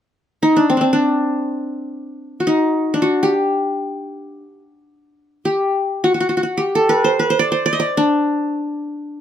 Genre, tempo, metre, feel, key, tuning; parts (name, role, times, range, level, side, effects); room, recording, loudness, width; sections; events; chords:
turkish; free time; D makam hicaz; A4 = 442 Hz
qanun; melody; 0.4-9.2 s; C4 to Eb5; -16 LUFS; equal
light reverb; minimal, uncompressed stereo recording; -16 LUFS; side -10 dB against mid
0.1-9.2 A section